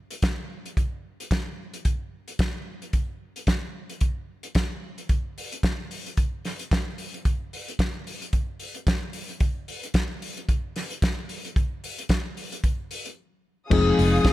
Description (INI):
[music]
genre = disco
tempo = 111 BPM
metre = 4/4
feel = swing 56% on 16ths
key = F minor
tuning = A4 = 444 Hz
[part]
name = warm soul drum kit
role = drums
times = 0.1-14.3 s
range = crash cymbal, hi-hat, kick drum, snare drum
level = -25 LUFS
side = equal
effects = none
[part]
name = mellow tine electric piano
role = accompaniment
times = 13.7-14.3 s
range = F3 to Ab4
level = -20 LUFS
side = left 4 dB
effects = none
[part]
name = dark studio string section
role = sustained chords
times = 13.7-14.3 s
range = Ab4 to Eb6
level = -26 LUFS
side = left 1 dB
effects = none
[part]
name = vintage muted fingered electric bass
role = bass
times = 13.7-14.2 s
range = F1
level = -22 LUFS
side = equal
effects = none
[sound]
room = studio reverb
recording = none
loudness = -25 LUFS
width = side -16 dB against mid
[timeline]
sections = 0.0-13.7 A section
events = none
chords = 0.0 N.C.; 13.7 Fm7